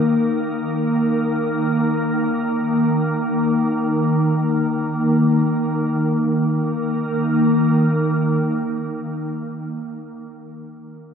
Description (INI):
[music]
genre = ambient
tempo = free time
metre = none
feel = none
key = unclear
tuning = A4 = 438 Hz
[part]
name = organ-like drone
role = drone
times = 0.0-9.4 s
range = Eb3 to Bb3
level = -18 LUFS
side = equal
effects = ensemble chorus, built-in reverb
[sound]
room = wet cathedral reverb, RT60 6.4 s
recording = in a vast, echoing space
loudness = -17 LUFS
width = side -7 dB against mid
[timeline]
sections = 0.0-6.0 A section; 6.0-8.5 B section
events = none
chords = 0.0 Eb5